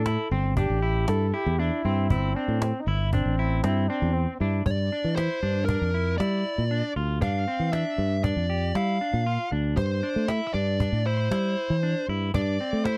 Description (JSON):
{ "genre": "progressive instrumental, band music in an uneven meter", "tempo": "117 BPM", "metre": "5/4", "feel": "straight", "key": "G dorian", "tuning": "A4 = 440 Hz", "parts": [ { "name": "warm flugelhorn", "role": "second line", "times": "0.0-4.6 s", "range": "C4 to A4", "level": "-33 LUFS", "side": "equal", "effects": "none" }, { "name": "fretless electric bass", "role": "bass", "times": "0.0-13.0 s", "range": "G1 to A3", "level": "-28 LUFS", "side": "equal", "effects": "none" }, { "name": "clean electric guitar", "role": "arpeggios", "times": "0.1-13.0 s", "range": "C4 to G4", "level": "-34 LUFS", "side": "equal", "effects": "none" }, { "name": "cajon", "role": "drums", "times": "0.1-13.0 s", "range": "none", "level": "-32 LUFS", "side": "equal", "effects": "none" }, { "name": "fuzz lead guitar", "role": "melody", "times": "4.7-13.0 s", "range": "Bb4 to F5", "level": "-32 LUFS", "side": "equal", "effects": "distortion" } ], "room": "small room ambience", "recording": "dry, close 1970s-style studio recording", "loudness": "-26 LUFS", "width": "mono", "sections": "0.0-4.7 A section; 4.7-13.0 B section", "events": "none", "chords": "0.0 C/G; 4.7 G7(no3); 9.8 C/G" }